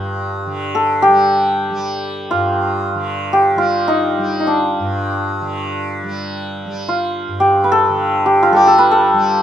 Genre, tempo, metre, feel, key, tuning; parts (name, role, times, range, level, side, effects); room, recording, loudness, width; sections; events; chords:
indian classical, Hindustani; free time; A4 = 440 Hz
santur; melody; 0.0-9.4 s; D4 to B4; -14 LUFS; equal
tanpura; drone; 0.0-9.4 s; G2 to G3; -23 LUFS; right 1 dB
moderate studio reverb, RT60 0.6 s; minimal, uncompressed stereo recording; -13 LUFS; side -10 dB against mid
0.0-9.4 A section